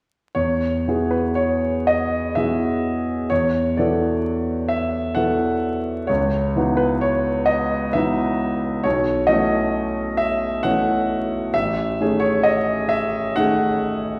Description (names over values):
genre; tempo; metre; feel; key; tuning
classical, impressionist solo piano; 39-46 BPM (dotted quarters); 6/8; rubato; E major; A4 = 440 Hz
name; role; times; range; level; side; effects
warm concert grand piano; solo; 0.3-14.2 s; A1 to F#5; -21 LUFS; equal; none
room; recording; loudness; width
wet recital hall reverb, RT60 1.4 s; recorded in a church or concert hall, vinyl crackle; -21 LUFS; mono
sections
0.4-14.2 A section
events
none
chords
0.4 Eadd9; 3.3 D69/E; 6.1 C#m11; 8.9 B9sus4; 11.5 Amaj7#11